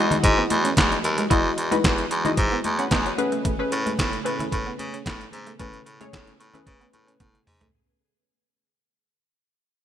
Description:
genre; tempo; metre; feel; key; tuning
early-eighties boogie funk; 112 BPM; 4/4; straight; unclear; A4 = 439 Hz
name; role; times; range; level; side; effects
funky polysynth comp; accompaniment; 0.0-7.2 s; G#3 to B5; -27 LUFS; left 2 dB; chorus
string machine, full ensemble; sustained chords; 0.0-7.7 s; C#3 to D#5; -35 LUFS; equal; phaser, ensemble chorus
edgy baritone saxophone; bass; 0.0-7.7 s; D#2 to C#3; -24 LUFS; equal; none
electric guitar at the edge of break-up; riff; 0.1-7.7 s; G#3 to E4; -32 LUFS; right 3 dB; lush chorus
detuned 8-bit digital drum machine; drums; 0.1-7.7 s; handclaps, hi-hat, kick drum, snare drum, toms; -24 LUFS; equal; gated reverb
congas; percussion; 0.1-7.6 s; none; -34 LUFS; left 2 dB; none
room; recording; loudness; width
light reverb, digital ambience; bright 1980s-style digital production; -20 LUFS; side -10 dB against mid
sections
0.0-7.7 A section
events
fade-out 0.0-7.7; drum fill 7.2-7.7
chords
0.0 Emaj9; 3.2 Amaj9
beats
0.24 0.77 | 1.31 1.84 2.38 2.92 | 3.45 3.99 4.52 5.06 | 5.59 6.13 6.67 7.20

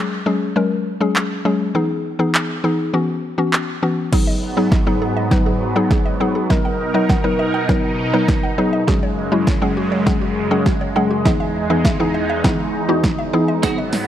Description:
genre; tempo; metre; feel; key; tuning
dance-pop; 101 BPM; 4/4; straight; unclear; A4 = 445 Hz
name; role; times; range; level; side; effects
mallet-like synth pluck; accompaniment; 0.0-14.0 s; E3 to B4; -19 LUFS; left 2 dB; chorus, sidechain pumping
punchy analog drum machine; drums; 1.2-14.1 s; crash cymbal, handclaps, hi-hat, kick drum, snare drum; -19 LUFS; right 1 dB; overdrive
filtered supersaw swell; sustained chords; 4.1-14.1 s; E2 to A#4; -22 LUFS; right 2 dB; phaser, sidechain pumping
mallet-like synth pluck; arpeggios; 4.1-13.9 s; E4 to F#5; -26 LUFS; right 4 dB; chorus, sidechain pumping, digital delay
twelve-string electric guitar; riff; 13.6-14.0 s; B3 to F#4; -24 LUFS; right 6 dB; lush chorus
riser; sound effects; 13.9-14.1 s; none; -40 LUFS; right 4 dB; none
room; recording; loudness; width
light reverb, digital ambience; dark, warm production; -16 LUFS; side -11 dB against mid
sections
0.0-4.1 A section; 4.1-14.1 B section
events
build-up 4.1-14.1; drum fill 4.1-14.1; filter sweep 4.1-14.1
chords
0.0 F#sus2; 1.8 Emaj7; 2.9 F#7sus4; 4.1 G#m7; 6.5 Bmaj7; 8.9 F#sus2; 11.3 Emaj7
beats
0.56 1.16 | 1.75 2.35 2.94 3.53 | 4.13 4.72 5.32 5.91 | 6.50 7.10 7.69 8.29 | 8.88 9.47 10.07 10.66 | 11.26 11.85 12.45 13.04 | 13.63

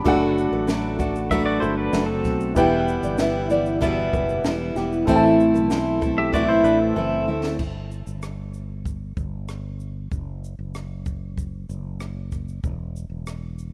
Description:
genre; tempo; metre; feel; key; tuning
acoustic pop; 95 BPM; 4/4; straight; unclear; A4 = 440 Hz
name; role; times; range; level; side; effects
dark upright piano; accompaniment; 0.0-7.6 s; D4 to B5; -28 LUFS; equal; none
fingerpicked steel-string acoustic guitar; accompaniment; 0.0-7.6 s; E2 to F#4; -23 LUFS; equal; none
fretless electric bass; bass; 0.0-13.7 s; E1 to D2; -32 LUFS; equal; none
nylon-string guitar; arpeggios; 0.1-7.4 s; G4 to E5; -33 LUFS; equal; none
compact cocktail drum kit; drums; 0.1-13.7 s; crash cymbal, kick drum, rim click, shaker, snare drum; -31 LUFS; equal; none
pedal steel guitar; second line; 1.3-7.6 s; C4 to E5; -29 LUFS; equal; none
room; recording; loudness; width
light reverb, small room reverb; rough home demo mix; -22 LUFS; mono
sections
0.0-7.6 A section; 7.6-13.7 B section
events
drum fill 7.0-7.6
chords
0.1 D/F#; 2.6 Em; 5.1 Am; 7.6 N.C.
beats
| 0.05 0.68 1.31 1.94 | 2.56 3.19 3.82 4.45 | 5.08 5.71 6.34 6.97 | 7.60 8.22 8.86 9.49 | 10.12 10.75 11.38 12.01 | 12.64 13.27

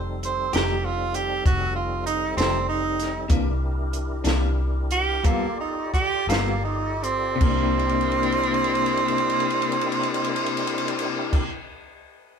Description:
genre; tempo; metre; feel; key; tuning
slow blues; 52-66 BPM (dotted quarters); 12/8; straight; C mixolydian; A4 = 440 Hz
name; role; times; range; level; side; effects
tonewheel organ; sustained chords; 0.0-11.4 s; G3 to D5; -30 LUFS; left 3 dB; slow rotary speaker, overdrive, chorus vibrato
vintage muted fingered electric bass; bass; 0.0-11.4 s; F1 to C2; -27 LUFS; equal; none
bright tenor saxophone; second line; 0.2-11.5 s; Bb3 to C5; -24 LUFS; right 5 dB; none
compact cocktail drum kit; drums; 0.2-11.5 s; crash cymbal, hi-hat, kick drum, ride cymbal, snare drum; -26 LUFS; equal; none
electric guitar at the edge of break-up; accompaniment; 0.5-11.6 s; C3 to A4; -28 LUFS; left 5 dB; tremolo
room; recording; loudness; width
moderate stone room reverb, RT60 1.1 s; band playing live in one room; -21 LUFS; side -6 dB against mid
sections
0.0-7.4 A section; 7.4-12.0 B section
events
tenor saxophone solo 0.0-7.4; slowing down 2.1-7.4; drum fill 7.8-11.3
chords
0.0 F9; 3.3 C9; 5.3 G9; 7.4 C9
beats
0.55 1.46 2.38 | 3.31 4.26 5.25 6.29 | 7.41 8.56 9.72 10.87

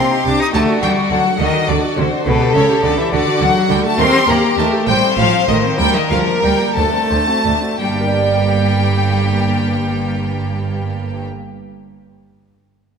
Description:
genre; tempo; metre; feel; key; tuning
classical, baroque-style concerto movement with solo episodes; 57-70 BPM (dotted quarters); 6/8; straight; G minor; A4 = 444 Hz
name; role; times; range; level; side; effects
clear cello; melody; 0.0-11.2 s; B2 to Eb4; -19 LUFS; left 2 dB; none
rich chamber violin section; melody; 0.0-11.2 s; B4 to Eb6; -20 LUFS; left 3 dB; none
rich chamber violin section; second line; 0.0-11.2 s; F#4 to C5; -20 LUFS; left 2 dB; none
lute; accompaniment; 0.0-11.5 s; D2 to D5; -25 LUFS; right 3 dB; none
warm symphonic viola section; accompaniment; 0.0-11.2 s; G3 to Bb4; -25 LUFS; right 2 dB; none
rich chamber double bass section; bass; 0.0-11.2 s; G1 to Eb2; -22 LUFS; right 5 dB; none
warm chamber cello section; bass; 0.0-11.2 s; D2 to Eb3; -23 LUFS; right 4 dB; none
room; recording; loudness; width
wet concert hall reverb, RT60 2.2 s; minimal, uncompressed stereo recording; -13 LUFS; side -6 dB against mid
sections
0.0-7.8 A section; 7.8-12.0 B section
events
slowing down 3.1-7.8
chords
0.0 Cm; 0.5 D; 2.3 A7/C#; 3.1 D; 4.0 Eb; 4.9 Adim; 5.8 Gm/D; 6.8 D7; 7.8 Gm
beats
| 0.54 1.39 | 2.26 3.12 | 3.98 4.87 | 5.79 6.76 | 7.80 8.85 | 9.91 10.96

